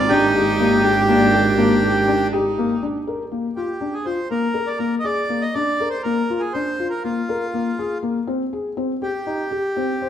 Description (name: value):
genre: contemporary instrumental, chamber music in an uneven meter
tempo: 242 BPM (eighths)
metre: 11/8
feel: straight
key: unclear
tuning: A4 = 440 Hz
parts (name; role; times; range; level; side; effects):
- accordion; melody; 0.0-10.1 s; F4 to Eb5; -21 LUFS; right 1 dB; none
- bright viola; second line; 0.0-2.8 s; D4 to Eb4; -25 LUFS; right 4 dB; none
- evolving wavetable pad; sustained chords; 0.0-2.8 s; Eb3 to D5; -30 LUFS; left 2 dB; phaser, built-in reverb
- clear double bass; bass; 0.0-2.8 s; Ab1; -22 LUFS; right 3 dB; none
- felt-muted upright piano; arpeggios; 0.1-10.1 s; Bb3 to C5; -22 LUFS; left 3 dB; none
room: wet recital hall reverb, RT60 1.4 s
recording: recorded in a church or concert hall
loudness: -18 LUFS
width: side -10 dB against mid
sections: 0.0-2.8 A section; 2.8-10.1 B section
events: none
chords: 0.1 Ebmaj7/Ab; 2.8 Bb; 8.3 Abmaj7 (rootless)